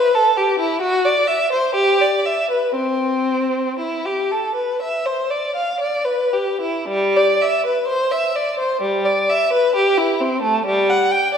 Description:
classical, baroque-style suite movement for unaccompanied violin; 54-68 BPM; 4/4; rubato; C major, G major from 6.9 s; A4 = 440 Hz
rich violin; solo; 0.0-11.4 s; G3 to G5; -16 LUFS; equal
wet scoring stage reverb, RT60 1.5 s; heard from further back in the room; -16 LUFS; side -7 dB against mid
0.0-6.9 A section; 6.9-11.4 A section

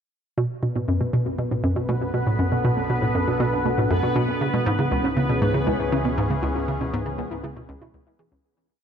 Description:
ambient, sequencer-driven space music; 119 BPM; 4/4; straight; B dorian; A4 = 438 Hz
sweeping resonant pad; sustained chords; 0.4-8.4 s; E3 to B4; -29 LUFS; left 1 dB; lush chorus
soft round pluck; arpeggios; 0.4-8.4 s; G#3 to G#4; -31 LUFS; moving between left 2 dB and right 4 dB; chorus, auto-pan, tape echo
hollow square pluck; riff; 0.4-8.4 s; C#2 to E3; -23 LUFS; equal; chorus, tape echo
round analog bass; bass; 0.4-8.4 s; B1 to C#2; -36 LUFS; equal
bubbling stepped-filter texture; texture; 0.7-8.5 s; B3 to B4; -28 LUFS; equal; chorus, built-in reverb
moderate huge ambient reverb, RT60 8.9 s; -21 LUFS; side -8 dB against mid
0.4-8.4 A section
fade-in on analog synth pad 0.4-8.4; fade-in on analog synth bass 0.4-8.4; filter sweep on synth arpeggio sound 0.4-8.4; fade-out 5.8-8.4
0.4 Bm7; 4.4 C#m7

